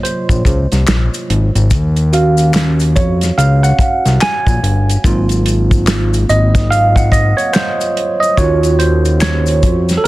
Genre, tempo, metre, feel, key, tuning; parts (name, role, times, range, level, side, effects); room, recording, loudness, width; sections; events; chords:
R&B, neo-soul; 72 BPM; 4/4; swing 61% on 16ths; Eb dorian; A4 = 440 Hz
tine electric piano; accompaniment; 0.0-10.1 s; C3 to Ab5; -15 LUFS; right 2 dB; phaser
warm soul drum kit; drums; 0.0-10.1 s; handclaps, hi-hat, kick drum, snare drum; -16 LUFS; equal
maracas and finger snaps; percussion; 0.1-10.0 s; -26 LUFS; left 8 dB
fat analog bass; bass; 0.3-10.1 s; G1 to F2; -13 LUFS; left 1 dB
little or no reverb; dense, heavily limited modern master; -10 LUFS; side -18 dB against mid
0.0-10.1 A section
tine electric piano solo 0.0-10.1
0.0 Ab13; 1.7 Ebm9; 5.0 Ab13; 8.4 Ebm9